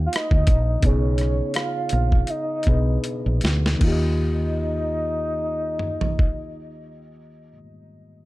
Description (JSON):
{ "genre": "R&B, neo-soul", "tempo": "76-86 BPM", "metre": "4/4", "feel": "swing 55% on 16ths", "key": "Eb major", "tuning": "A4 = 442 Hz", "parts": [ { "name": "overdriven reed electric piano", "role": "accompaniment", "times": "0.0-8.3 s", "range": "B2 to F5", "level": "-29 LUFS", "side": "left 2 dB", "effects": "none" }, { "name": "woody fretless electric bass", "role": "bass", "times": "0.0-7.6 s", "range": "Bb1 to Eb2", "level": "-22 LUFS", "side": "equal", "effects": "none" }, { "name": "soft octave-layered synth lead", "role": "melody", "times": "0.1-7.6 s", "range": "C#5 to F5", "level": "-28 LUFS", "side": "right 1 dB", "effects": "chorus, tremolo, tape echo" }, { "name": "boom bap sampler-style drum kit", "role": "drums", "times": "0.1-6.4 s", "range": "crash cymbal, hi-hat, kick drum, rim click, snare drum, toms", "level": "-21 LUFS", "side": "equal", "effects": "none" } ], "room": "light reverb", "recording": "dark, warm production", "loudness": "-19 LUFS", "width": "side -18 dB against mid", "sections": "0.0-3.8 A section; 3.8-7.0 B section", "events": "slowing down 0.0-3.8; drum fill 3.0-3.8", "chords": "0.0 Ebmaj9; 0.8 B69; 3.8 Ebadd9" }